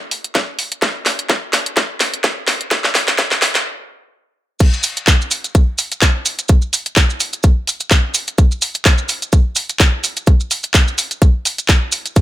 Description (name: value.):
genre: house.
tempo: 127 BPM.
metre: 4/4.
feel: swing 55% on 16ths.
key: none.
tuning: none.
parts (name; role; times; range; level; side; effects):
garage drum kit; drums; 0.1-12.2 s; crash cymbal, handclaps, hi-hat, ride cymbal, snare drum; -16 LUFS; equal; high-pass filter on hats, high-pass filter on snare, high-pass filter on cymbals, high-pass filter on room.
electronic kick drum; drums; 0.3-12.2 s; none; -12 LUFS; equal; high-pass filter on kick, high-pass filter on room.
maracas; percussion; 4.6-12.2 s; none; -20 LUFS; right 3 dB; none.
room: light reverb.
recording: high-pass filter.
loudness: -13 LUFS.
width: side -14 dB against mid.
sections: 0.0-4.6 A section; 4.6-12.2 B section.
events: build-up 0.0-4.6; drum fill 0.0-3.7; stop 3.7-4.6; drop 4.6-12.2.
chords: none.